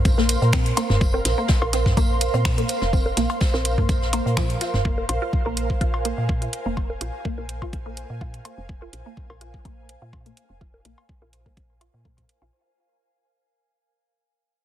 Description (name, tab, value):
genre	minimal techno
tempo	125 BPM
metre	4/4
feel	swing 54% on 16ths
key	unclear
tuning	A4 = 440 Hz
part	ethereal airy pad	texture	0.0-12.6 s	Bb4 to C6	-30 LUFS	right 3 dB	ensemble chorus, built-in reverb, sidechain pumping
part	pulsing gated texture	texture	0.0-12.5 s	C5	-35 LUFS	right 2 dB	chorus, built-in reverb, sidechain pumping
part	woody FM bass	bass	0.1-12.5 s	F1 to Bb2	-25 LUFS	equal	tube saturation, sidechain pumping
part	electronic kick drum	drums	0.1-12.3 s	none	-22 LUFS	equal	overdrive
part	garage drum kit	drums	0.1-12.4 s	finger snaps, hi-hat	-26 LUFS	right 1 dB	overdrive
part	jazz brush drum kit	drums	0.1-4.8 s	hi-hat, snare drum, tambourine	-34 LUFS	left 1 dB	high-pass filter on hats, high-pass filter on snare, high-pass filter on perc, high-pass filter on room
part	resonant blip pluck	riff	0.2-12.5 s	F3 to F4	-30 LUFS	left 1 dB	phaser, wide subtle chorus, sidechain pumping, tape echo
part	electronic cowbell, toms and bongos	percussion	0.8-11.9 s	none	-28 LUFS	equal	digital delay
room	light reverb, digital ambience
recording	heavily compressed radio sound, multiband compression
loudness	-20 LUFS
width	side -11 dB against mid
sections	0.0-12.5 A section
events	fade-out 0.0-12.5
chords	0.0 Bb5